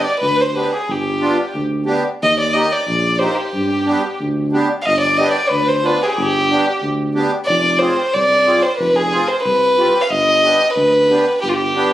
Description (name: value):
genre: klezmer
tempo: 91 BPM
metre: 2/4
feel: straight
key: G phrygian dominant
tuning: A4 = 440 Hz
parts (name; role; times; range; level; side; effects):
- warm violin; melody; 0.0-11.9 s; F4 to F5; -15 LUFS; equal; tape echo
- accordion; accompaniment; 0.0-11.9 s; Bb3 to Ab4; -19 LUFS; right 1 dB; light tremolo tuning
- mellow tuba; bass; 0.2-11.8 s; F1 to G2; -22 LUFS; equal; none
room: moderate studio reverb, RT60 0.6 s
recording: recorded on a phone in the room, studio ambience, compression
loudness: -14 LUFS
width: side -13 dB against mid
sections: 0.0-4.8 A section; 4.8-11.9 A section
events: none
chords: 0.0 G; 2.2 Eb; 3.5 G; 7.5 Fm; 10.1 G